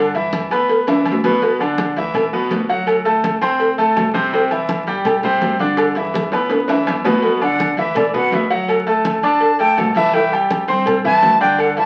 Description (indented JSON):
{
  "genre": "latin, salsa",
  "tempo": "165 BPM",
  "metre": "4/4",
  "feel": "straight",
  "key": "G major",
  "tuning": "A4 = 440 Hz",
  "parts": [
    { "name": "bright concert grand piano", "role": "accompaniment", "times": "0.0-11.9 s", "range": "B2 to D6", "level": "-20 LUFS", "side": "equal", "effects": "none" },
    { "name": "upright bass", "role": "bass", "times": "0.0-11.9 s", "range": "G1 to G2", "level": "-34 LUFS", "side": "equal", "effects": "none" },
    { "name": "congas", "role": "percussion", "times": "0.1-11.9 s", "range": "none", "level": "-29 LUFS", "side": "equal", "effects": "none" },
    { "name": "cowbell and bongos", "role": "percussion", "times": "0.1-11.9 s", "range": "none", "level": "-24 LUFS", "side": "equal", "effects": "none" },
    { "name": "timbales and agogo bells", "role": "percussion", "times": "0.3-11.8 s", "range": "none", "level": "-26 LUFS", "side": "equal", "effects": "none" },
    { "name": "bright silver concert flute", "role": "melody", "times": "7.4-11.9 s", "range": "D5 to A5", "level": "-19 LUFS", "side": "equal", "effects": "none" }
  ],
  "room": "wet studio reverb, RT60 0.6 s",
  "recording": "very old 78 rpm record, vinyl crackle",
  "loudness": "-17 LUFS",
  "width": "mono",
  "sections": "0.0-7.2 A section; 7.2-11.9 B section",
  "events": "drum fill 0.9-1.4, 5.8-7.2; flute solo 7.2-11.9",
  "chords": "0.0 G6; 2.9 D7; 4.3 C; 5.8 G6; 8.7 D7; 10.1 C",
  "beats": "0.33 0.69 1.06 | 1.42 1.79 2.15 2.51 | 2.88 3.24 3.60 3.97 | 4.33 4.69 5.06 5.42 | 5.78 6.15 6.51 6.87 | 7.24 7.60 7.96 8.32 | 8.69 9.05 9.41 9.77 | 10.14 10.50 10.86 11.22 | 11.59"
}